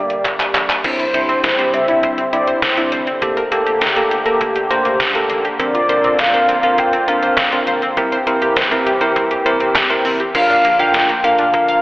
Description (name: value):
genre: synth-pop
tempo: 101 BPM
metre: 4/4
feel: straight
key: unclear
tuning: A4 = 440 Hz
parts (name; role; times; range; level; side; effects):
- mellow horn-like synth lead; melody; 0.0-11.8 s; C5 to G5; -17 LUFS; equal; chorus, diffuse ambient delay
- warm analog pad; sustained chords; 0.0-11.8 s; D3 to G4; -22 LUFS; equal; chorus
- round analog bass; bass; 0.0-11.7 s; F1 to C2; -39 LUFS; equal; none
- detuned 8-bit digital drum machine; drums; 0.1-11.8 s; crash cymbal, handclaps, hi-hat, kick drum, snare drum; -19 LUFS; equal; none
- bell-like tine electric piano; accompaniment; 0.8-11.8 s; Bb3 to C5; -19 LUFS; right 1 dB; fast stereo tremolo
- analog pluck; arpeggios; 0.8-11.8 s; Bb3 to F5; -21 LUFS; equal; chorus, diffuse ambient delay
room: wet lush hall reverb, RT60 1.8 s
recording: dreamy mix soaked in reverb, telephone sound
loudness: -13 LUFS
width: side -20 dB against mid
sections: 0.8-10.3 A section; 10.3-11.8 B section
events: drum fill 0.3-0.8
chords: 0.0 Gm; 0.8 Cadd9; 3.2 Gmadd9; 5.6 Bbadd9; 8.0 C7; 10.3 Bb